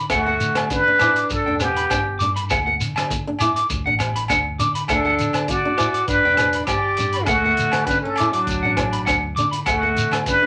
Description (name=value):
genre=highlife guitar band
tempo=100 BPM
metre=4/4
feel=swing 53% on 16ths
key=D major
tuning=A4 = 440 Hz
part: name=electric guitar at the edge of break-up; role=arpeggios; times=0.0-10.2 s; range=F#5 to D6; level=-25 LUFS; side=equal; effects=none
part: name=hollow-body short-scale fingered electric bass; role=bass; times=0.0-10.4 s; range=E1 to D3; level=-32 LUFS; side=equal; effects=none
part: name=trumpet with plunger mute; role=melody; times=0.1-10.5 s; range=D4 to D5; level=-23 LUFS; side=equal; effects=none
part: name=breathy tenor saxophone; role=second line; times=0.1-10.5 s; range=F#3 to G4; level=-29 LUFS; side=equal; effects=none
part: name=flamenco guitar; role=accompaniment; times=0.1-10.5 s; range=A3 to C#5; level=-32 LUFS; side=equal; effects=none
part: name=crunchy breakbeat drum kit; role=drums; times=0.1-10.4 s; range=hi-hat, kick drum, rim click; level=-30 LUFS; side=equal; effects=none
part: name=agogo bells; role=percussion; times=0.1-10.3 s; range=none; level=-31 LUFS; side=equal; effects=none
part: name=shekere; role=percussion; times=0.1-10.4 s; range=none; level=-30 LUFS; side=equal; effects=none
room=wet small room reverb, RT60 0.5 s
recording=none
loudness=-20 LUFS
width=mono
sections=0.0-9.7 A section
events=none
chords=0.1 D; 1.3 G; 2.5 D; 3.7 Bm; 4.9 D; 6.1 G; 7.3 D; 8.5 Bm; 9.7 D